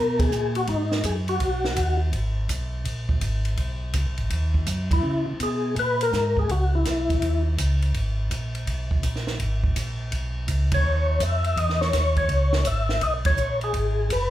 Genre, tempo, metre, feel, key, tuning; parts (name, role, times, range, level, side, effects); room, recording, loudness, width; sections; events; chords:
soul jazz organ trio; 165 BPM; 4/4; swing 66% on 8ths; G# minor; A4 = 440 Hz
percussive tonewheel organ; melody; 0.0-2.0, 4.9-7.4, 10.7-14.3 s; D#4 to E5; -24 LUFS; left 2 dB; slow rotary speaker, overdrive, chorus vibrato
mellow tonewheel organ; bass; 0.0-14.3 s; F#1 to C#3; -24 LUFS; equal; slow rotary speaker
compact cocktail drum kit; drums; 0.2-14.2 s; hi-hat, kick drum, ride cymbal, snare drum; -28 LUFS; right 1 dB
moderate large studio reverb, RT60 0.8 s; band playing live in one room; -22 LUFS; side -13 dB against mid
0.0-14.3 A section
band accent 0.1, 4.9, 10.7, 13.2
0.0 G#m7; 5.0 C#m7; 9.4 G#m; 10.8 C#madd9/D#; 12.3 C#m7; 13.7 G#m7